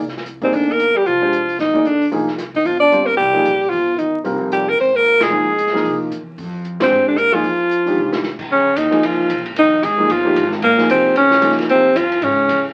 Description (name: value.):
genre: modal jazz.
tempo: 226 BPM.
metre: 4/4.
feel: swing 60% on 8ths.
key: C minor, Bb dorian from 8.5 s.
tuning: A4 = 440 Hz.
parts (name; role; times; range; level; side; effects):
upright bass; bass; 0.0-12.7 s; F1 to C3; -34 LUFS; equal; none.
open jazz drum kit; drums; 0.0-12.6 s; crash cymbal, hi-hat, kick drum, ride cymbal, snare drum; -30 LUFS; equal; none.
clear alto saxophone; melody; 0.4-12.7 s; Bb3 to D5; -16 LUFS; equal; none.
warm trombone; second line; 0.4-12.7 s; Bb2 to D4; -28 LUFS; equal; none.
clear concert grand piano; accompaniment; 0.4-11.8 s; Eb3 to D5; -23 LUFS; equal; none.
room: wet small room reverb, RT60 0.5 s.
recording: very old 78 rpm record, vinyl crackle.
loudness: -16 LUFS.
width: mono.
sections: 0.0-8.5 A section; 8.5-12.7 B section.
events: band accent 5.2, 6.8; drum fill 8.0.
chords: 0.0 Cm11; 4.2 Fm11; 8.5 Bbm11.